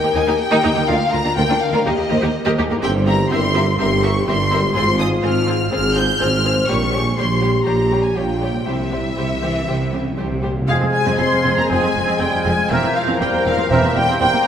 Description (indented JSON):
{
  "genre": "classical, dramatic, fast romantic movement for symphony orchestra",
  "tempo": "123 BPM",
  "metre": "4/4",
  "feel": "straight",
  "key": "F minor",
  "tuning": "A4 = 441 Hz",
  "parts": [
    { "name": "warm symphonic violin section", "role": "melody", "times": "0.0-14.5 s", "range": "Eb5 to G6", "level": "-22 LUFS", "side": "left 2 dB", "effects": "none" },
    { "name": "warm symphonic violin section", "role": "second line", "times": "0.0-14.5 s", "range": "D4 to C6", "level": "-26 LUFS", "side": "left 2 dB", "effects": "none" },
    { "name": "warm symphonic viola section", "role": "accompaniment", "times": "0.0-14.5 s", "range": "G3 to Bb4", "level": "-26 LUFS", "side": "right 2 dB", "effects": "none" },
    { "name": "dark French horn section", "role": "sustained chords", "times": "0.0-14.5 s", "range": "E3 to C5", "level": "-24 LUFS", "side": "left 3 dB", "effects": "none" },
    { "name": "concert harp", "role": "arpeggios", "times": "0.0-14.5 s", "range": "G2 to C6", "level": "-28 LUFS", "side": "left 6 dB", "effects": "none" },
    { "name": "rich symphonic cello section", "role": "bass", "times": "0.0-14.4 s", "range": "D2 to E3", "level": "-25 LUFS", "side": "right 3 dB", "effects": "none" },
    { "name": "mellow tuba", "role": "bass", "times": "0.2-14.3 s", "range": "E1 to Eb2", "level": "-24 LUFS", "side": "right 3 dB", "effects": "none" },
    { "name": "rich symphonic double bass section", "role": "bass", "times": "0.2-14.3 s", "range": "E1 to Eb2", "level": "-26 LUFS", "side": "right 3 dB", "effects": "none" },
    { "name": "timpani", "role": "percussion", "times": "8.7-10.7 s", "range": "C3", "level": "-26 LUFS", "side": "equal", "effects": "none" },
    { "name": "dark clarinet", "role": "second line", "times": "10.7-14.5 s", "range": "C5", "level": "-27 LUFS", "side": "equal", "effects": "none" },
    { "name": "large flute ensemble", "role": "second line", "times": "10.7-14.5 s", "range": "G6 to Ab6", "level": "-24 LUFS", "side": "right 1 dB", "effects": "none" },
    { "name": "mellow bassoon", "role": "accompaniment", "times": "10.7-14.5 s", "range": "Ab3 to Bb3", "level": "-26 LUFS", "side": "right 2 dB", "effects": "none" },
    { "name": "mellow trombone section", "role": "sustained chords", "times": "10.7-13.9 s", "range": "E3 to C4", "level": "-28 LUFS", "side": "right 2 dB", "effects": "none" },
    { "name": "dark trumpet section", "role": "stabs", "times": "10.7-13.9 s", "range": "Ab4 to Bb4", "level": "-28 LUFS", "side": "right 2 dB", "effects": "none" }
  ],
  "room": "wet concert hall reverb, RT60 2.4 s",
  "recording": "none",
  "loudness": "-15 LUFS",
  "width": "side -8 dB against mid",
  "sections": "0.0-10.7 A section; 10.7-14.5 B section",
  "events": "timpani fill 8.7-10.7",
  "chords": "0.0 Eb; 0.9 Bb/D; 1.9 Eb; 2.8 C7/G; 4.8 Fm/Ab; 6.7 Gdim/Bb; 8.7 C; 10.7 Fm; 12.7 C7/E",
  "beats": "0.40 | 0.89 1.37 1.86 2.35 | 2.83 3.31 3.79 4.27 | 4.75 5.23 5.71 6.20 | 6.69 7.17 7.66 8.16 | 8.67 9.17 9.68 10.18 | 10.69 11.20 11.70 12.20 | 12.71 13.21 13.71 14.21"
}